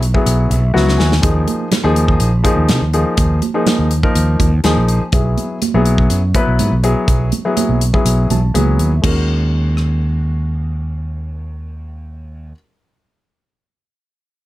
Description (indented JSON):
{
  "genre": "electric jazz fusion",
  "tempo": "123 BPM",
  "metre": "4/4",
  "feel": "straight",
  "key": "unclear",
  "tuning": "A4 = 438 Hz",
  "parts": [
    { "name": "fretless electric bass", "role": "bass", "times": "0.0-12.5 s", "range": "Bb1 to C3", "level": "-15 LUFS", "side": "equal", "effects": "none" },
    { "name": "modern studio drum kit", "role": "drums", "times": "0.0-9.9 s", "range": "crash cymbal, hi-hat, kick drum, rim click, snare drum", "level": "-18 LUFS", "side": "equal", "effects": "none" },
    { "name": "warm baby grand piano", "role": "accompaniment", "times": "0.1-12.5 s", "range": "F3 to A5", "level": "-18 LUFS", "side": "left 2 dB", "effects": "none" },
    { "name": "congas", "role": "percussion", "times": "1.2-9.3 s", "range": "none", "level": "-22 LUFS", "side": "right 8 dB", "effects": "none" }
  ],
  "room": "little or no reverb",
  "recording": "none",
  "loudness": "-13 LUFS",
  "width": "side -16 dB against mid",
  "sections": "0.0-9.0 A section; 9.0-12.9 B section",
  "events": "grand piano fill 0.3-1.2, 4.4-5.1, 8.1-9.0; drum fill 0.7-1.2",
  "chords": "0.0 Bsus24; 1.2 Ebsus24; 5.1 Bsus4; 9.0 Ebm"
}